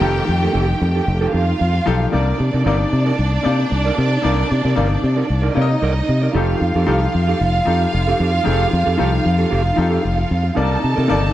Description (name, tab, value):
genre	disco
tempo	114 BPM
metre	4/4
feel	straight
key	C dorian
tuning	A4 = 440 Hz
part	warm studio violin section	second line	0.0-11.3 s	D4 to A5	-22 LUFS	right 3 dB	none
part	clear baby grand piano	accompaniment	0.0-11.3 s	C3 to Eb5	-23 LUFS	left 6 dB	none
part	mellow electric guitar	accompaniment	0.0-11.3 s	Eb4 to D5	-24 LUFS	right 6 dB	spring reverb
part	warm symphonic string section	sustained chords	0.0-2.1, 10.6-11.3 s	Eb3 to G4	-27 LUFS	left 3 dB	none
part	fingered electric bass	bass	0.0-11.3 s	F1 to C3	-18 LUFS	equal	none
room	little or no reverb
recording	dry, close 1970s-style studio recording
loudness	-15 LUFS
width	side -13 dB against mid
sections	0.0-2.1 A section; 2.1-11.3 B section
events	none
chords	0.0 F9; 2.1 Cm9; 6.3 F9; 10.6 Cm9